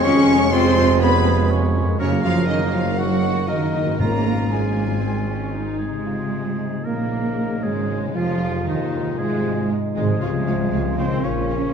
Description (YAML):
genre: classical, dramatic, fast romantic movement for symphony orchestra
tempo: 113-123 BPM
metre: 4/4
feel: straight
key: Db major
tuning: A4 = 440 Hz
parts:
  - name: rich symphonic violin section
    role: melody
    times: 0.0-11.6 s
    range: Ab3 to Db6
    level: -30 LUFS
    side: left 4 dB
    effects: none
  - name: mellow hollow concert flute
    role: second line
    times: 0.0-5.5 s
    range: Db5 to Db6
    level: -29 LUFS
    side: left 3 dB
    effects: none
  - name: warm oboe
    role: second line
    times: 0.0-11.7 s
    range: Eb4 to Db5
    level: -31 LUFS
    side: right 1 dB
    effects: none
  - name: warm symphonic violin section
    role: second line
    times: 0.0-11.6 s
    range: Ab3 to Db5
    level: -32 LUFS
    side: left 2 dB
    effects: none
  - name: rich symphonic viola section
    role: accompaniment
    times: 0.0-11.6 s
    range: Eb3 to Ab4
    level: -29 LUFS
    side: right 1 dB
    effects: none
  - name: clear trombone section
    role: sustained chords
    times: 0.0-11.7 s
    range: Db3 to Db4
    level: -30 LUFS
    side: right 3 dB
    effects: none
  - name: mellow French horn section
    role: sustained chords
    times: 0.0-11.7 s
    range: Ab2 to Db4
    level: -25 LUFS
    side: left 3 dB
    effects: none
  - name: concert harp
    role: arpeggios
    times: 0.0-11.7 s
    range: F2 to Bb4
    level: -29 LUFS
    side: left 9 dB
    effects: none
  - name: rich studio cello section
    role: bass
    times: 0.0-11.7 s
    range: Db3 to Db4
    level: -25 LUFS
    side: right 3 dB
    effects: none
  - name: rich symphonic double bass section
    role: bass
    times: 0.0-11.7 s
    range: Ab1 to Bb2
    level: -25 LUFS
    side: right 3 dB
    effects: none
  - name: warm tuba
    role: bass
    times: 0.0-11.7 s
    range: F1 to Eb2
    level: -29 LUFS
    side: right 2 dB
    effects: none
  - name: timpani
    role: percussion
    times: 4.0-4.7 s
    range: Ab2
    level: -26 LUFS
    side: left 3 dB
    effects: none
  - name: mellow bassoon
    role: accompaniment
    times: 6.1-11.7 s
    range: Db4 to F4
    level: -30 LUFS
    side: equal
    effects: none
room: wet concert hall reverb, RT60 2.4 s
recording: dark, warm production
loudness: -18 LUFS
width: side -7 dB against mid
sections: 0.0-6.1 A section; 6.1-11.7 B section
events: none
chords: 0.0 Db/F; 1.0 Db7/F; 2.0 Gb; 3.0 Ebm/Gb; 4.0 Db/Ab; 5.0 Ab; 6.1 Db; 8.2 Ab; 10.2 Db